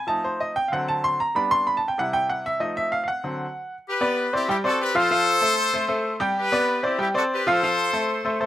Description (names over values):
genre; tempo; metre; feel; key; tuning
latin; 192 BPM; 4/4; straight; G major; A4 = 440 Hz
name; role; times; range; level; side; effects
bright upright piano; accompaniment; 0.0-8.5 s; C3 to C6; -22 LUFS; equal; slapback echo
brilliant horn section; melody; 3.9-8.5 s; E4 to C5; -23 LUFS; left 2 dB; slapback echo
room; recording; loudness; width
little or no reverb; recorded outdoors, with no room sound; -20 LUFS; side -13 dB against mid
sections
0.0-3.9 A section; 3.9-8.5 B section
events
upright piano solo 0.0-3.9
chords
0.1 F7; 0.7 D7; 1.4 G; 2.0 C; 2.6 F7; 3.2 D7; 3.9 G; 4.5 Csus2; 5.1 F; 5.7 Gsus24; 6.4 G; 7.0 Csus2; 7.6 F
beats
| 0.10 0.41 0.72 1.04 | 1.35 1.66 1.98 2.29 | 2.60 2.92 3.23 3.54 | 3.86 4.17 4.48 4.80 | 5.11 5.42 5.74 6.05 | 6.36 6.68 6.99 7.30 | 7.62 7.93 8.24